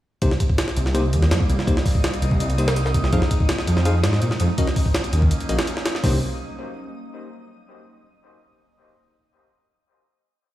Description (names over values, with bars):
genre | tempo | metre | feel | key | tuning
drum and bass, jungle | 165 BPM | 4/4 | straight | C minor | A4 = 440 Hz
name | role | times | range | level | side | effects
warbly tape-like pad | sustained chords | 0.7-6.2 s | F3 to Eb4 | -31 LUFS | right 1 dB | chorus, built-in reverb, phaser
bell-like tine electric piano | stabs | 0.2-6.2 s | Bb3 to F5 | -28 LUFS | left 2 dB | vintage 12-bit sampler grit, dub echo
detuned saw bass | bass | 0.2-6.2 s | Bb1 to Bb2 | -20 LUFS | equal | tube saturation
jungle sampler-style drum kit | drums | 0.2-6.1 s | hi-hat, kick drum, snare drum | -21 LUFS | equal | none
twinkling granular texture | texture | 0.5-6.0 s | Eb5 to Eb6 | -35 LUFS | equal | built-in reverb
room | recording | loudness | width
light reverb, digital ambience | played on a big sound system in a bare room, stone room reverb | -18 LUFS | side -14 dB against mid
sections
0.2-6.0 drop; 6.0-7.5 final chord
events
drop 0.2-6.0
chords
0.2 Cm7; 3.1 Fm7; 4.6 Ebm7; 6.0 Cm7